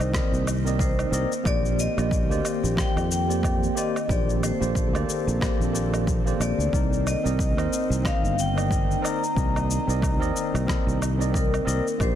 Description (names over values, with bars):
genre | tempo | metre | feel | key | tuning
sunset chillout | 91 BPM | 4/4 | swing 57% on 16ths | C dorian | A4 = 436 Hz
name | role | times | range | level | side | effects
vibraphone with medium mallets | melody | 0.0-12.2 s | Bb4 to Bb5 | -30 LUFS | left 2 dB | ping-pong delay
tine electric piano | accompaniment | 0.0-12.2 s | Bb3 to Eb5 | -30 LUFS | moving between left 4 dB and right 7 dB | medium stereo tremolo, auto-pan, digital delay
airy breathy pad | sustained chords | 0.0-12.2 s | D3 to A4 | -31 LUFS | left 1 dB | chorus
sustaining fretless electric bass | bass | 0.0-12.2 s | G1 to F2 | -26 LUFS | equal | none
electronic woodblock, shaker and rim click | drums | 0.0-12.2 s | none | -33 LUFS | left 1 dB | overdrive, soft clipping on snare
electronic kick drum | drums | 0.1-12.2 s | none | -26 LUFS | equal | overdrive
room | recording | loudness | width
light reverb | dense, heavily limited modern master | -22 LUFS | side -10 dB against mid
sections
0.0-12.2 A section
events
none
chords
0.0 Cm9; 1.5 Bb69; 6.7 Cm9